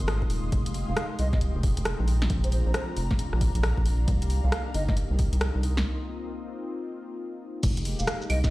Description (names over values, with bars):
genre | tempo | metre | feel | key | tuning
UK garage, two-step garage | 135 BPM | 4/4 | swing 63% on 16ths | F dorian | A4 = 441 Hz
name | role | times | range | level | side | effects
warm analog pad | sustained chords | 0.0-8.5 s | Ab3 to G4 | -37 LUFS | left 2 dB | chorus, sidechain pumping
rubbery square bass | bass | 0.0-8.5 s | Eb1 to C2 | -26 LUFS | equal | sidechain pumping
garage drum kit | drums | 0.0-8.5 s | claves, crash cymbal, hi-hat, rim click, shaker, snare drum | -33 LUFS | equal | none
ethereal airy pad | texture | 0.0-8.5 s | Ab3 to Eb6 | -39 LUFS | left 2 dB | ensemble chorus, built-in reverb, sidechain pumping
electronic kick drum | drums | 0.2-8.5 s | none | -27 LUFS | equal | none
mellow hollow concert flute | melody | 0.9-4.9, 8.0-8.5 s | C5 to F5 | -36 LUFS | right 1 dB | digital delay
room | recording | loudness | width
light reverb | played on a big sound system in a bare room, stone room reverb | -24 LUFS | side -18 dB against mid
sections
0.0-7.6 A section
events
break 5.9-7.6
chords
0.0 Ab6; 0.5 Fm11; 2.1 Bb7; 4.1 Cm9; 5.9 Bbsus24; 7.6 Fm11